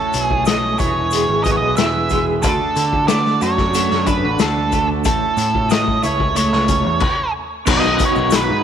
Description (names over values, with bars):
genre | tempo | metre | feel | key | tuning
psychedelic rock | 92 BPM | 4/4 | straight | unclear | A4 = 440 Hz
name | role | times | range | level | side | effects
octave-fuzz lead guitar | melody | 0.0-8.6 s | A4 to E5 | -19 LUFS | right 2 dB | distortion, tape echo
combo organ | sustained chords | 0.0-8.6 s | A3 to C#5 | -27 LUFS | right 10 dB | spring reverb
electric guitar through a small old amp | riff | 0.0-8.6 s | A2 to F#4 | -22 LUFS | equal | tremolo, double-tracked left and right
overdriven picked electric bass | bass | 0.1-8.6 s | E1 to D3 | -22 LUFS | equal | none
vintage drum kit | drums | 0.1-8.5 s | crash cymbal, hi-hat, kick drum, snare drum | -20 LUFS | left 3 dB | none
egg shaker | percussion | 0.1-8.5 s | none | -34 LUFS | left 14 dB | none
room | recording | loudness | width
light reverb | 1960s-style stereo with parts hard left and right | -14 LUFS | side -8 dB against mid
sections
0.0-7.7 A section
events
stop 7.0-7.7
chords
0.0 A; 0.8 E; 2.4 D; 5.1 A; 7.7 B